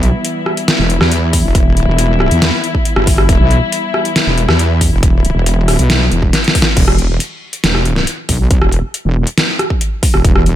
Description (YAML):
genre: heavy wobble dubstep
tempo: 138 BPM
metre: 4/4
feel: half-time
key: E minor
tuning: A4 = 439 Hz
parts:
  - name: dark studio string section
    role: sustained chords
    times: 0.0-6.7 s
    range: E3 to E4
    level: -20 LUFS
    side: left 4 dB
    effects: sidechain pumping, low-pass filter
  - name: wobble bass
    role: bass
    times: 0.0-10.6 s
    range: E1 to E2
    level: -13 LUFS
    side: equal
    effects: chorus, overdrive
  - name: dubstep drum kit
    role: drums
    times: 0.0-10.6 s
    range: crash cymbal, hi-hat, rim click, snare drum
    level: -15 LUFS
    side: equal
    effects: overdrive
  - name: electronic kick drum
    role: drums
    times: 1.3-10.3 s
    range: none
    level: -13 LUFS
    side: equal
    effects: overdrive
room: digital ambience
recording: none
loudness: -11 LUFS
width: side -12 dB against mid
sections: 0.0-6.8 A section; 6.8-10.6 A section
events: drop 0.0-6.8, 6.8-10.6; drum fill 6.3-6.8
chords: 0.0 Em; 6.8 N.C.